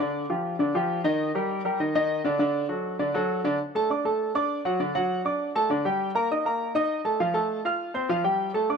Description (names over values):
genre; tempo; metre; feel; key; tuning
latin; 200 BPM; 4/4; straight; unclear; A4 = 435 Hz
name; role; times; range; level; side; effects
clear grand piano; solo; 0.0-8.8 s; D3 to F6; -24 LUFS; equal; none
room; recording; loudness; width
light reverb; none; -24 LUFS; side -6 dB against mid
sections
0.0-3.6 A section; 3.6-8.8 B section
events
none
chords
0.0 G5; 1.2 Ebmaj7; 2.4 D; 6.0 Eb/G; 7.2 F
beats
| 0.00 0.30 0.60 0.90 | 1.20 1.50 1.80 2.10 | 2.40 2.70 3.00 3.30 | 3.60 3.90 4.20 4.50 | 4.80 5.10 5.40 5.70 | 6.00 6.30 6.60 6.90 | 7.20 7.50 7.80 8.10 | 8.40 8.70